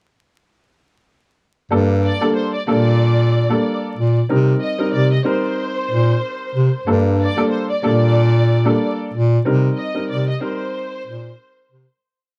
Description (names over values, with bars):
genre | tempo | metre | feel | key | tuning
hip hop, boom-bap hip-hop | 93 BPM | 4/4 | swing 59% on 16ths | G minor | A4 = 440 Hz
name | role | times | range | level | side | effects
dark upright piano | accompaniment | 1.7-11.9 s | G3 to Bb4 | -23 LUFS | equal | cassette tape, high-pass filter, low-pass filter
warm bass clarinet | bass | 1.7-11.9 s | G2 to C3 | -18 LUFS | equal | none
warm studio violin section | melody | 2.0-12.0 s | C5 to Eb5 | -27 LUFS | equal | high-pass filter, low-pass filter, delay
room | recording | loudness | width
light reverb | dark, warm production, vinyl crackle | -18 LUFS | mono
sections
1.7-12.0 verse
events
fade-out 9.4-12.0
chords
1.7 Gmadd9; 4.3 Cm7; 6.9 Gmadd9; 9.4 Cm7